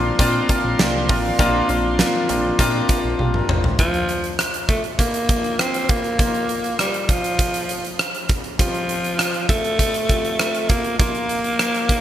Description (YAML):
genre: 1980s-style pop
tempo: 100 BPM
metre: 4/4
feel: straight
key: Bb major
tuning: A4 = 444 Hz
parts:
  - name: warm grand piano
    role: accompaniment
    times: 0.0-12.0 s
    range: Bb2 to C5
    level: -24 LUFS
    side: left 2 dB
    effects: none
  - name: chorused pulse-width pad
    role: sustained chords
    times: 0.0-3.8 s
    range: Bb4 to C6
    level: -27 LUFS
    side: right 2 dB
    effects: none
  - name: fat analog bass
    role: bass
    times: 0.0-3.7 s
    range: A1 to Bb2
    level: -25 LUFS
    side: equal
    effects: none
  - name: huge arena drum kit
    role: drums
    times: 0.2-12.0 s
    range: hi-hat, kick drum, rim click, snare drum, toms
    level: -20 LUFS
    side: right 1 dB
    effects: gated reverb
  - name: breathy alto saxophone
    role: melody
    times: 3.8-12.0 s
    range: F3 to C4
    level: -22 LUFS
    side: equal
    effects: digital delay
room: moderate lush hall reverb, RT60 1.8 s, small room ambience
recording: bright 1980s-style digital production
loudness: -17 LUFS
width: side -11 dB against mid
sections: 0.0-3.8 A section; 3.8-12.0 B section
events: drum fill 3.2-3.8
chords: 0.0 Bbadd9; 3.8 Bb; 6.2 Ebsus2; 8.6 Fsus2; 11.0 Ebsus2